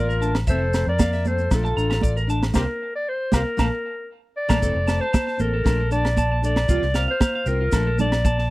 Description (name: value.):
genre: highlife guitar band.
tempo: 116 BPM.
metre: 4/4.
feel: straight.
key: F major.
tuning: A4 = 440 Hz.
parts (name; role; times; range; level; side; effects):
clear clarinet; melody; 0.0-8.5 s; A4 to D5; -25 LUFS; left 1 dB; none.
warm trumpet; second line; 0.0-4.6 s; F4 to Bb4; -34 LUFS; left 4 dB; none.
electric guitar at the edge of break-up; arpeggios; 0.0-8.5 s; F4 to Bb5; -29 LUFS; right 3 dB; lush chorus, tape echo.
fingered electric bass; bass; 0.0-8.5 s; F1 to F2; -23 LUFS; equal; none.
maracas; percussion; 0.1-8.4 s; none; -39 LUFS; left 5 dB; none.
fingerpicked steel-string acoustic guitar; accompaniment; 0.2-8.2 s; E3 to G4; -30 LUFS; left 4 dB; none.
tight funk drum kit; drums; 0.3-8.4 s; kick drum, snare drum; -22 LUFS; equal; none.
agogo bells; percussion; 0.3-8.2 s; none; -34 LUFS; right 2 dB; none.
congas; percussion; 0.5-8.4 s; none; -27 LUFS; right 3 dB; none.
room: little or no reverb.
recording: dry, close 1970s-style studio recording.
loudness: -19 LUFS.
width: side -19 dB against mid.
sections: 0.0-4.6 A section; 4.6-8.5 B section.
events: band accent 2.5-4.6; drum fill 4.4.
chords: 0.5 Fmaj7; 1.5 Bbmaj7; 2.5 C7sus4; 3.6 Bbmaj7; 4.6 Fmaj7; 5.7 Bbmaj7; 6.7 C7sus4; 7.7 Bbmaj7.